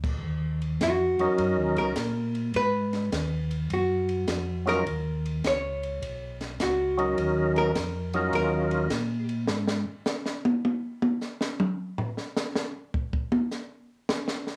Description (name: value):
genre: soul jazz organ trio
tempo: 104 BPM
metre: 4/4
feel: swing 67% on 8ths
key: Eb minor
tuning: A4 = 440 Hz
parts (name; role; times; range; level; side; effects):
- mellow tonewheel organ; bass; 0.0-9.9 s; Cb2 to Bb2; -32 LUFS; equal; chorus vibrato, slow rotary speaker
- compact cocktail drum kit; drums; 0.0-14.6 s; crash cymbal, hi-hat, kick drum, ride cymbal, snare drum, toms; -32 LUFS; equal; none
- archtop guitar, miked and amplified; accompaniment; 0.8-9.3 s; Gb4 to Db5; -31 LUFS; equal; none
- percussive tonewheel organ; melody; 1.2-8.9 s; Gb3 to Bb4; -28 LUFS; equal; slow rotary speaker, overdrive, chorus vibrato
room: light reverb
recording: small room ambience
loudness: -28 LUFS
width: mono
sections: 0.2-14.6 A section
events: hollow-body jazz guitar solo 0.2-14.6; drum solo 9.5-14.6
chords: 0.2 Ebm7; 2.5 Abm7; 4.9 Ebm7; 9.5 N.C.